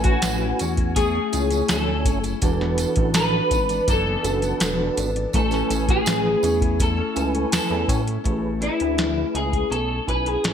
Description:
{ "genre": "indie pop, bedroom pop", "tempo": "82 BPM", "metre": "4/4", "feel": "straight", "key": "A major", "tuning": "A4 = 441 Hz", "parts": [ { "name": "electric guitar through a small old amp", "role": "melody", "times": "0.0-10.5 s", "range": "E4 to B4", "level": "-24 LUFS", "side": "left 1 dB", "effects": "ensemble chorus" }, { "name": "fingerpicked steel-string acoustic guitar", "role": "accompaniment", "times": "0.0-10.5 s", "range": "E3 to A4", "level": "-28 LUFS", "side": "left 7 dB", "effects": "lush chorus, vibrato effect" }, { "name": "mellow tonewheel organ", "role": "accompaniment", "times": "0.0-10.5 s", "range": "C4 to G#5", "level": "-29 LUFS", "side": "right 7 dB", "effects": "chorus vibrato, stopped rotary speaker" }, { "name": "chorused synth bass", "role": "bass", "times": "0.0-10.5 s", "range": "E1 to A2", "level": "-26 LUFS", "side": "equal", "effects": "none" }, { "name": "soft vintage rhythm box", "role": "drums", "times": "0.0-10.5 s", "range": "hi-hat, kick drum, snare drum", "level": "-23 LUFS", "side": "equal", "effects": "overdrive, gated reverb" }, { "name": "tambourine", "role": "percussion", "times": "0.2-8.1 s", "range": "none", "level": "-35 LUFS", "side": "right 9 dB", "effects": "none" } ], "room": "light reverb, digital ambience", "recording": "bright 1980s-style digital production", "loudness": "-19 LUFS", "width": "side -8 dB against mid", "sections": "0.0-8.3 A section; 8.3-10.5 B section", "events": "none", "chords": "0.0 Amaj7; 2.4 E7sus4; 5.3 Amaj7" }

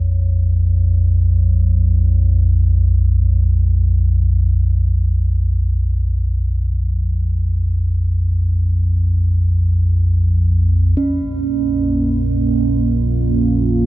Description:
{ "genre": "dark ambient drone", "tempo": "free time", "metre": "none", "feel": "none", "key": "Bb minor", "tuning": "A4 = 441 Hz", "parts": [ { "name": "deep rumbling drone", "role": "drone", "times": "0.0-13.9 s", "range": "Bb1 to F2", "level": "-14 LUFS", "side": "equal", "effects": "built-in reverb, lush chorus" }, { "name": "quartz singing bowl", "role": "texture", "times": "0.0-13.9 s", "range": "Db4 to Db5", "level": "-20 LUFS", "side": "right 5 dB", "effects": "none" }, { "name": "dark analog pad", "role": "sustained chords", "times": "11.3-13.9 s", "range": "Bb3 to C5", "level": "-18 LUFS", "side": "right 2 dB", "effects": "chorus" } ], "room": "light reverb", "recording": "none", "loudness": "-14 LUFS", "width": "side -18 dB against mid", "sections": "0.0-11.0 A section; 11.0-13.9 B section", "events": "none", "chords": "0.0 Bbm; 11.0 Bbmadd9" }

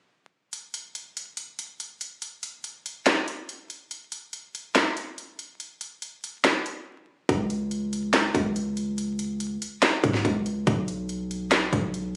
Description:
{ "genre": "hip hop, trap", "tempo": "142 BPM", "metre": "4/4", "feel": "half-time", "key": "unclear", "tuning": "A4 = 440 Hz", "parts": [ { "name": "trap drum kit", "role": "drums", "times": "0.5-12.0 s", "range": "handclaps, hi-hat, kick drum, snare drum", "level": "-26 LUFS", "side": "equal", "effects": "none" }, { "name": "distorted 808-style bass", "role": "bass", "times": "7.3-12.2 s", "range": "B1 to G#2", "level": "-30 LUFS", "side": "equal", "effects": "distortion" } ], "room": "moderate plate reverb, RT60 1.1 s, digital ambience", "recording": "recorded on a phone in the room, studio reverb, vinyl crackle", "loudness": "-28 LUFS", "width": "mono", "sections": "0.5-7.3 A section; 7.3-12.2 B section", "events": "break 6.9-7.3", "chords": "none" }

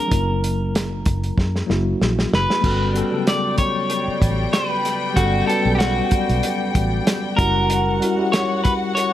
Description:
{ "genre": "lush 1970s-style soul", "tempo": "95 BPM", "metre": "4/4", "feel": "swing 54% on 16ths", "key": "unclear", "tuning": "A4 = 440 Hz", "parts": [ { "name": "electric guitar at the edge of break-up", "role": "melody", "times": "0.0-9.1 s", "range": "F#4 to D5", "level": "-23 LUFS", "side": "equal", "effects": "none" }, { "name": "tine electric piano", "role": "accompaniment", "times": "0.0-9.1 s", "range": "C#3 to B4", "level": "-23 LUFS", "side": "left 2 dB", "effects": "overdrive, fast stereo tremolo" }, { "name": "vintage muted fingered electric bass", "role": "bass", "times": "0.1-8.0 s", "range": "F#1 to F#2", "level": "-22 LUFS", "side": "equal", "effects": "none" }, { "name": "warm soul drum kit", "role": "drums", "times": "0.1-9.1 s", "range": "crash cymbal, hi-hat, kick drum, snare drum", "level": "-22 LUFS", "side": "right 1 dB", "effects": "none" }, { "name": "warm studio string section", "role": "second line", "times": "2.6-9.1 s", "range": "G3 to G5", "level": "-26 LUFS", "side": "left 1 dB", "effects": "none" } ], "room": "light reverb, small room ambience", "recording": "none", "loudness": "-17 LUFS", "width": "side -12 dB against mid", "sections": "0.0-2.6 A section; 2.6-9.1 B section", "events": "drum fill 1.4-2.6", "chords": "0.1 F#7; 2.6 Gmaj9#11; 7.4 F#7b9" }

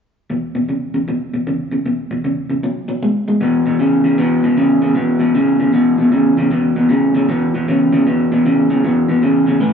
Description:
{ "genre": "blues", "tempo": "155 BPM", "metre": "4/4", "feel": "swing 65% on 8ths", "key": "E major", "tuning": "A4 = 439 Hz", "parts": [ { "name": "electric guitar through a small old amp", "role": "solo", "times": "0.3-9.7 s", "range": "E2 to G#3", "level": "-13 LUFS", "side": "equal", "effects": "none" } ], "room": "wet large studio reverb, RT60 1.4 s", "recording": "band playing live in one room, nothing above 7.5 kHz", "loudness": "-13 LUFS", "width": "side -7 dB against mid", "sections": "0.3-3.4 A section; 3.4-9.7 B section", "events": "none", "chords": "0.3 E5; 2.6 B5; 3.4 E5" }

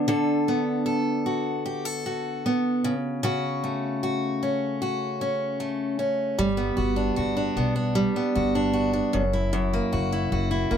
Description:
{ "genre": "acoustic pop", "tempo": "76 BPM", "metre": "4/4", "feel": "straight", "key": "unclear", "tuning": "A4 = 441 Hz", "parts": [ { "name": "picked steel-string acoustic guitar", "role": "accompaniment", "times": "0.0-10.8 s", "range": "F#2 to A4", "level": "-23 LUFS", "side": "equal", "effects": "none" }, { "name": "upright bass", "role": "bass", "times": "6.4-10.8 s", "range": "F#1 to B1", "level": "-28 LUFS", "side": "left 1 dB", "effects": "none" } ], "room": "light reverb", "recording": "faint mains hum", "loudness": "-23 LUFS", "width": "side -8 dB against mid", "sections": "0.0-6.4 A section; 6.4-10.8 B section", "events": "none", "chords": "0.0 Bm7/D; 2.8 F#m/C#; 6.4 Gmaj7; 9.1 F#7" }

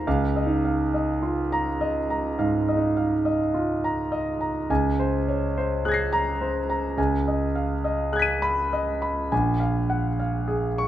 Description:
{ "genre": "classical, impressionist solo piano", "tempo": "52 BPM", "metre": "4/4", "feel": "rubato", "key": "unclear", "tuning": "A4 = 440 Hz", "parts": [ { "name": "clear concert grand piano", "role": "solo", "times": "0.0-10.9 s", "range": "Bb1 to D#7", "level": "-22 LUFS", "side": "equal", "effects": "none" } ], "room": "light reverb", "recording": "close, detailed microphones", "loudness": "-22 LUFS", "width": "side -12 dB against mid", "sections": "0.0-10.9 A section", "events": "none", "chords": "0.1 Db69; 4.7 Ab9/Db; 7.0 B69/C#; 9.3 Bb7(no3)" }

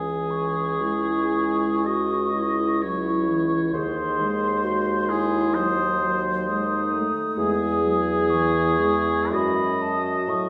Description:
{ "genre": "classical, slow romantic movement for wind quintet", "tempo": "55-67 BPM", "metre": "4/4", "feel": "rubato", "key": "C# minor", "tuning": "A4 = 440 Hz", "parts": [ { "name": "mellow hollow silver concert flute", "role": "melody", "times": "0.0-10.5 s", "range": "G#5 to D#6", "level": "-31 LUFS", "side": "equal", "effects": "none" }, { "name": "warm oboe", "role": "second line", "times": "0.0-10.5 s", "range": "G#4 to D#5", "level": "-29 LUFS", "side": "equal", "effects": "none" }, { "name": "dark French horn", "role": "accompaniment", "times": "0.0-10.5 s", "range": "D#3 to A3", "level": "-33 LUFS", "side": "equal", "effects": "none" }, { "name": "mellow clarinet", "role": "accompaniment", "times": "0.0-10.5 s", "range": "D#4 to G#4", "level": "-29 LUFS", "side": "equal", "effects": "none" }, { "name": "mellow bassoon", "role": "bass", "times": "0.0-10.5 s", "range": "C#2 to A2", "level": "-30 LUFS", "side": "equal", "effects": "none" } ], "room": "wet recital hall reverb, RT60 1.8 s", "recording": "heard from further back in the room", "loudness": "-23 LUFS", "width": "mono", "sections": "0.0-10.5 A section", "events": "none", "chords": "0.0 C#m; 3.7 G#7/D#; 7.4 C#m/E; 9.3 F#m" }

